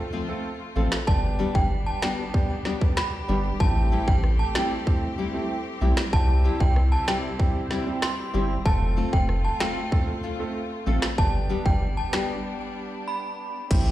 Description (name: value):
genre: dancehall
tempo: 95 BPM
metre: 4/4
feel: straight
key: unclear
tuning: A4 = 440 Hz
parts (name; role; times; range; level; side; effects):
- clear studio string section; sustained chords; 0.0-13.9 s; C3 to G4; -35 LUFS; left 1 dB; sidechain pumping
- nylon-string guitar; arpeggios; 0.1-12.3 s; F3 to A4; -30 LUFS; left 5 dB; none
- warm grand piano; accompaniment; 0.3-13.9 s; G3 to A4; -32 LUFS; right 4 dB; sidechain pumping
- saturated sub bass; bass; 0.8-13.9 s; F1 to C2; -23 LUFS; equal; none
- island pop drum kit; drums; 0.9-13.9 s; crash cymbal, finger snaps, hi-hat, kick drum, rim click, snare drum; -23 LUFS; equal; none
- synth chime; melody; 1.1-13.5 s; G5 to C6; -31 LUFS; right 1 dB; ensemble chorus, tremolo, ping-pong delay
room: small room ambience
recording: played on a big sound system in a bare room, large studio reverb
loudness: -22 LUFS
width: side -14 dB against mid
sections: 0.0-13.7 A section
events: break 12.4-13.7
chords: 0.0 F; 1.1 G; 3.6 Am7; 6.1 C; 8.7 F; 11.2 G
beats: 0.45 | 1.08 1.71 2.34 2.97 | 3.60 4.23 4.87 5.50 | 6.13 6.76 7.39 8.02 | 8.65 9.29 9.92 10.55 | 11.18 11.81 12.45 13.08 | 13.71